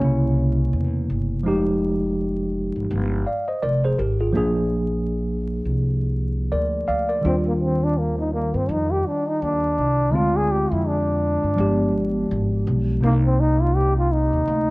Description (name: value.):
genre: hip hop, jazz-hop.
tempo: 83 BPM.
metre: 4/4.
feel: swing 59% on 16ths.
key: C minor.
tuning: A4 = 439 Hz.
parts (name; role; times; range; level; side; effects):
breathy trombone; melody; 0.0-0.7, 7.3-14.7 s; Bb3 to Ab4; -23 LUFS; equal; analog delay.
mellow tine electric piano; accompaniment; 0.0-14.7 s; C3 to F5; -22 LUFS; equal; medium stereo tremolo.
upright bass; bass; 0.0-14.7 s; F1 to G2; -24 LUFS; equal; none.
room: moderate echo chamber reverb, RT60 1.2 s, small room ambience.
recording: worn, warbling old tape, cassette tape, vinyl crackle, warbly pitch drift.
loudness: -19 LUFS.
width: side -23 dB against mid.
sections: 0.0-14.7 A section.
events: none.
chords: 0.0 C7b9; 1.5 Fm9; 4.4 Bb7; 7.2 Ebmaj9; 10.1 Dm7b5; 11.6 G7b9; 13.0 Cm9.